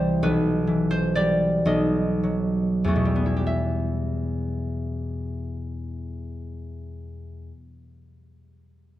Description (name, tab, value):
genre	classical, solo harp piece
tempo	31-47 BPM (dotted quarters)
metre	6/8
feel	rubato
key	E minor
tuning	A4 = 440 Hz
part	concert harp	solo	0.0-8.1 s	B1 to E5	-23 LUFS	equal	none
room	light reverb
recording	minimal, uncompressed stereo recording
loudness	-22 LUFS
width	side -14 dB against mid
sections	0.0-3.5 A section; 3.5-9.0 B section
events	slowing down 0.0-3.5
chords	0.2 Em/B; 1.7 B7; 3.5 Em